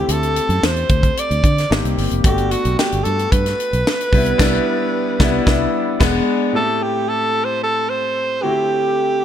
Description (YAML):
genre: polished 1980s jazz-funk pop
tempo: 112 BPM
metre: 4/4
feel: straight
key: A dorian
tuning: A4 = 440 Hz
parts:
  - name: breathy alto saxophone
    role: melody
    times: 0.0-9.2 s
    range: F#4 to D5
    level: -20 LUFS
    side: right 2 dB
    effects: none
  - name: warm concert grand piano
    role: accompaniment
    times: 0.0-9.2 s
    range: A2 to G4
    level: -21 LUFS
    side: left 3 dB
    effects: analog chorus
  - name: fingered electric bass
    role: bass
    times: 0.1-6.2 s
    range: E1 to D3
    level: -20 LUFS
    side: equal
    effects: none
  - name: tight funk drum kit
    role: drums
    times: 0.1-6.2 s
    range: crash cymbal, hi-hat, kick drum, snare drum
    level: -19 LUFS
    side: equal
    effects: none
room: moderate lush hall reverb, RT60 1.9 s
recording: bright 1980s-style digital production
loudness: -15 LUFS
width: side -10 dB against mid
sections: 0.0-6.5 A section; 6.5-9.2 A section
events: band accent 4.4-6.5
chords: 0.0 D7sus4; 1.7 G#maj7; 2.2 Gmaj7; 4.1 Cmaj9; 6.0 E7; 6.5 Am7; 8.4 D7sus4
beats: | 0.09 0.62 1.16 1.70 | 2.24 2.78 3.32 3.86 | 4.39 4.93 5.47 6.01 | 6.54 7.08 7.62 8.15 | 8.69 9.23